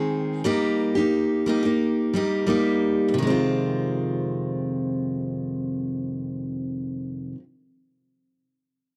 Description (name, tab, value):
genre	pop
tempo	89 BPM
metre	4/4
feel	straight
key	F minor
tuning	A4 = 442 Hz
part	picked steel-string acoustic guitar	accompaniment	0.0-7.4 s	F2 to Ab4	-25 LUFS	equal	none
room	digital ambience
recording	dry, close 1970s-style studio recording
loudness	-25 LUFS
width	mono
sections	0.0-3.2 A section; 3.2-5.9 B section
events	none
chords	0.5 Eb/G; 3.2 Fm7